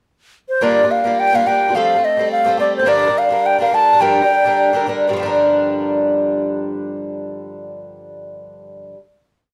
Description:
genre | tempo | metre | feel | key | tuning
celtic folk, Celtic reel | 211 BPM | 4/4 | swing 54% on 8ths | G minor | A4 = 440 Hz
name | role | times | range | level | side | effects
bright baroque flute | melody | 0.5-4.9 s | C5 to A5 | -16 LUFS | equal | none
fingerpicked twelve-string acoustic guitar | accompaniment | 0.6-9.0 s | G2 to Bb4 | -21 LUFS | equal | none
room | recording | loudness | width
light reverb | none | -16 LUFS | mono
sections
0.0-0.6 pickup bar; 0.6-5.1 A section; 5.1-7.4 final chord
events
none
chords
0.0 N.C.; 0.6 Gm7; 1.7 Fadd9; 2.9 Gm7

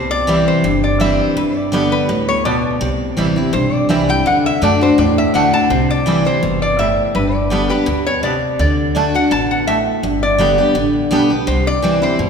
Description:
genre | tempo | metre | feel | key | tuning
bluegrass | 166 BPM | 4/4 | swing 54% on 8ths | G major | A4 = 440 Hz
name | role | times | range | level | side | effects
lap resonator guitar | melody | 0.0-12.3 s | B4 to A5 | -18 LUFS | left 1 dB | none
picked steel-string acoustic guitar | accompaniment | 0.0-12.3 s | G2 to G4 | -16 LUFS | equal | none
upright bass | bass | 0.0-12.3 s | G1 to G2 | -22 LUFS | equal | none
bluegrass banjo | melody | 0.3-11.2 s | G3 to E4 | -27 LUFS | right 6 dB | none
room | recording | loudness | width
wet church reverb, RT60 2.3 s | recorded in a church or concert hall | -13 LUFS | side -6 dB against mid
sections
0.0-11.5 A section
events
none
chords
0.0 C; 1.4 G; 2.8 C; 4.3 D; 5.7 C; 7.2 G; 8.6 D; 10.0 G; 11.5 C

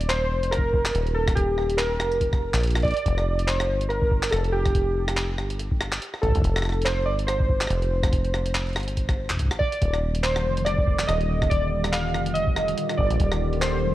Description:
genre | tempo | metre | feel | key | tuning
IDM | 142 BPM | 4/4 | swing 56% on 16ths | Eb lydian | A4 = 444 Hz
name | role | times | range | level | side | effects
warbly lo-fi synth keys | melody | 0.0-13.9 s | G4 to F5 | -26 LUFS | right 1 dB | chorus, tape echo
deep acid bass | bass | 0.0-13.9 s | Eb1 to C2 | -26 LUFS | equal | none
jungle sampler-style drum kit | drums | 0.0-13.7 s | handclaps, hi-hat, rim click | -30 LUFS | equal | none
electronic kick drum | drums | 0.6-13.3 s | none | -24 LUFS | equal | overdrive
warbly tape-like pad | sustained chords | 10.2-13.9 s | Bb2 to G4 | -29 LUFS | equal | chorus, built-in reverb
room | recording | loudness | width
light reverb, digital ambience | worn, warbling old tape, cassette tape, warbly pitch drift | -21 LUFS | side -15 dB against mid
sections
0.0-13.9 A section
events
none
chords
0.0 Eb5; 3.1 Fsus2; 9.8 Ebmaj7

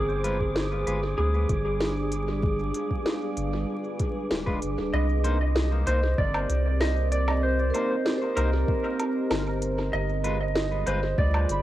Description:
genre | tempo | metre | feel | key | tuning
ambient dub | 96 BPM | 4/4 | straight | C minor | A4 = 440 Hz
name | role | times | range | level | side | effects
clean lap steel guitar | melody | 0.0-11.6 s | Ab4 to Eb5 | -30 LUFS | right 1 dB | dub echo
deep dark ambient pad | sustained chords | 0.0-11.6 s | G3 to G5 | -32 LUFS | right 1 dB | chorus, built-in reverb, cassette tape
soft dub sub bass | bass | 0.0-11.6 s | D1 to D2 | -26 LUFS | equal | none
wind-like tuned noise texture | texture | 0.0-4.9 s | D6 | -42 LUFS | right 4 dB | built-in reverb, cassette tape
clean electric guitar | stabs | 0.2-11.0 s | Ab3 to C5 | -36 LUFS | left 2 dB | cassette tape, dub echo
organic electronic drum kit | drums | 0.2-11.6 s | hi-hat, snare drum, woodblock | -32 LUFS | equal | overdrive, cassette tape, dub echo
electronic kick drum | drums | 0.4-11.3 s | none | -28 LUFS | equal | overdrive, cassette tape
vibraphone with hard mallets | arpeggios | 7.7-11.6 s | Bb4 to B5 | -35 LUFS | right 1 dB | cassette tape, analog delay
room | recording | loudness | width
light reverb, digital ambience | home recording on cassette, vinyl crackle | -24 LUFS | side -14 dB against mid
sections
0.0-4.9 A section; 4.9-11.6 B section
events
none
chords
0.0 G7b9; 4.9 Cm7; 9.9 G7b9

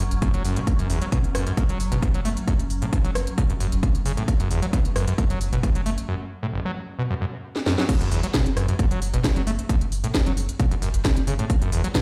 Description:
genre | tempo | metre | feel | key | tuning
driving peak-time techno | 133 BPM | 4/4 | straight | unclear | A4 = 439 Hz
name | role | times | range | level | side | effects
screaming distorted acid line | riff | 0.0-12.0 s | F#1 to A3 | -29 LUFS | equal | distortion, chorus, vintage 12-bit sampler grit, sidechain pumping, tape echo
saturated sub bass | bass | 0.0-11.8 s | F#1 | -29 LUFS | equal | sidechain pumping, low-pass filter
swarming drone | drone | 0.0-6.1 s | F#3 to C#4 | -37 LUFS | equal | built-in reverb, sidechain pumping
techno drum kit | drums | 0.1-12.0 s | crash cymbal, hi-hat, rim click, snare drum | -32 LUFS | equal | overdrive, sidechain pumping on hats, studio ambience, sidechain pumping on cymbals
electronic kick drum | drums | 0.2-12.0 s | none | -24 LUFS | equal | overdrive, studio ambience
room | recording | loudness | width
light reverb, digital ambience | played on a big sound system in a bare room, large studio reverb | -23 LUFS | mono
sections
0.0-7.9 A section; 7.9-12.0 B section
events
break 6.1-7.9; drum fill 7.6-7.9; band accent 7.8; drop 7.9-12.0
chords
0.0 F#5; 7.9 N.C.

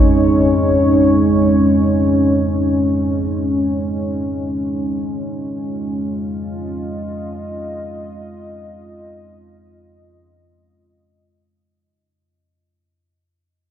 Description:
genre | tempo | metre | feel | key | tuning
ambient | free time | none | none | unclear | A4 = 440 Hz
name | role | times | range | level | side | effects
deep dark ambient pad | sustained chords | 0.0-11.8 s | Ab3 to Eb5 | -17 LUFS | equal | chorus, built-in reverb
dark detuned synth bell | arpeggios | 0.0-11.8 s | Eb4 | -42 LUFS | right 2 dB | none
deep rumbling drone | drone | 0.0-11.9 s | F2 to Ab3 | -21 LUFS | equal | built-in reverb
room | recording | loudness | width
wet cathedral reverb, RT60 5.5 s | dreamy mix soaked in reverb | -15 LUFS | side -9 dB against mid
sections
0.0-11.7 A section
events
fade-out 0.0-11.7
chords
0.0 Dbsus2

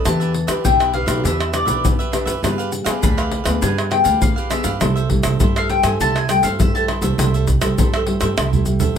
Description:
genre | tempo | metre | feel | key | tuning
samba and choro | 101 BPM | 4/4 | straight | C major | A4 = 440 Hz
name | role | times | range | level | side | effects
cavaquinho | accompaniment | 0.0-9.0 s | D4 to F5 | -27 LUFS | right 6 dB | none
nylon-string guitar | accompaniment | 0.0-9.0 s | G2 to B4 | -24 LUFS | left 1 dB | none
upright bass | bass | 0.0-9.0 s | B1 to G3 | -22 LUFS | right 2 dB | none
mandolin | melody | 0.1-6.8 s | D5 to B5 | -20 LUFS | left 4 dB | none
tube shaker, surdo, pandeiro and tamborim | percussion | 0.1-9.0 s | none | -20 LUFS | equal | none
room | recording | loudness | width
light reverb | none | -15 LUFS | side -8 dB against mid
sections
0.0-9.0 A section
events
mandolin solo 0.0-9.0; drum fill 8.4-9.0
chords
0.1 Em7; 2.4 G7b9; 4.8 C6

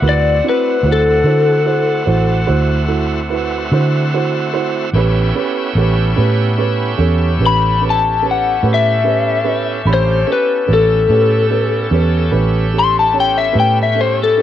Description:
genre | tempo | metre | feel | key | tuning
blues | 49 BPM (dotted quarters) | 12/8 | straight | A mixolydian | A4 = 440 Hz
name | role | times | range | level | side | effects
dark upright piano | accompaniment | 0.0-14.4 s | C4 to B5 | -20 LUFS | right 9 dB | cassette tape
bright tonewheel organ | sustained chords | 0.0-14.4 s | D3 to C5 | -25 LUFS | equal | slow rotary speaker, overdrive, cassette tape
warm horn section | sustained chords | 0.0-14.4 s | C4 to F#5 | -26 LUFS | right 1 dB | cassette tape
vintage muted fingered electric bass | bass | 0.0-14.4 s | A1 to D3 | -16 LUFS | right 1 dB | none
electric slide guitar | melody | 0.1-14.4 s | A4 to C6 | -14 LUFS | left 5 dB | cassette tape
room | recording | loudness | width
light reverb, small room ambience | home recording on cassette | -12 LUFS | side -11 dB against mid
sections
0.0-14.4 A section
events
electric slide guitar solo 0.0-14.4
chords
0.0 D7; 4.9 A7

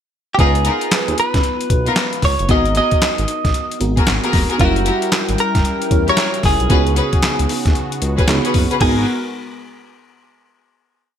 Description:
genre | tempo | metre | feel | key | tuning
R&B, new jack swing | 114 BPM | 4/4 | swing 63% on 16ths | unclear | A4 = 440 Hz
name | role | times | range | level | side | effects
direct-recorded clean electric guitar | melody | 0.3-9.1 s | F#4 to D#5 | -20 LUFS | equal | wide subtle chorus
FM electric piano with soft pad layer | accompaniment | 0.4-9.1 s | G3 to C#5 | -24 LUFS | right 3 dB | chorus
warm studio string section | stabs | 0.4-9.0 s | B3 to B4 | -22 LUFS | left 3 dB | none
smooth synth bass | bass | 0.4-9.1 s | E1 to D#2 | -20 LUFS | equal | none
boom bap sampler-style drum kit | drums | 0.4-9.0 s | crash cymbal, handclaps, hi-hat, kick drum, snare drum | -18 LUFS | equal | gated reverb
warm analog pad | sustained chords | 4.6-9.1 s | C#3 to G5 | -27 LUFS | left 1 dB | chorus
room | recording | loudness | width
light reverb | bright 1980s-style digital production | -14 LUFS | side -9 dB against mid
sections
0.0-0.4 pickup bar; 0.4-8.8 pre-chorus; 8.8-10.9 final chord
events
none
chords
0.4 C#13; 2.5 G#m9; 4.6 F#7b9; 6.7 C#7sus4; 8.8 G#m9

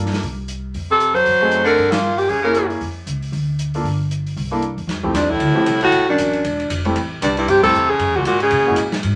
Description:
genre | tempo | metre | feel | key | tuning
jazz, small-group swing and bop | 232 BPM | 4/4 | swing 58% on 8ths | unclear | A4 = 439 Hz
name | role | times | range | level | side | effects
clear grand piano | accompaniment | 0.0-8.8 s | F3 to A4 | -25 LUFS | equal | none
upright bass | bass | 0.0-9.2 s | E1 to C3 | -27 LUFS | equal | none
open jazz drum kit | drums | 0.1-9.1 s | crash cymbal, hi-hat, kick drum, ride cymbal, snare drum | -30 LUFS | equal | none
bright alto saxophone | melody | 0.9-2.7, 5.2-8.9 s | D4 to C5 | -18 LUFS | equal | none
bright baritone saxophone | second line | 0.9-2.7, 5.1-8.9 s | F2 to Gb3 | -24 LUFS | equal | none
room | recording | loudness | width
wet studio reverb, RT60 0.5 s | none | -18 LUFS | mono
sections
0.0-4.9 A section; 4.9-9.2 B section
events
band accent 1.9, 7.6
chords
0.2 N.C.; 0.7 F; 1.3 F#dim7; 1.8 Gm7; 2.3 Gb9; 2.8 Db; 3.3 D5; 3.9 N.C.; 4.4 C13; 4.9 Fmaj7; 5.9 Bm7; 6.4 Fmaj13/E; 7.0 Am7; 8.0 Gb9

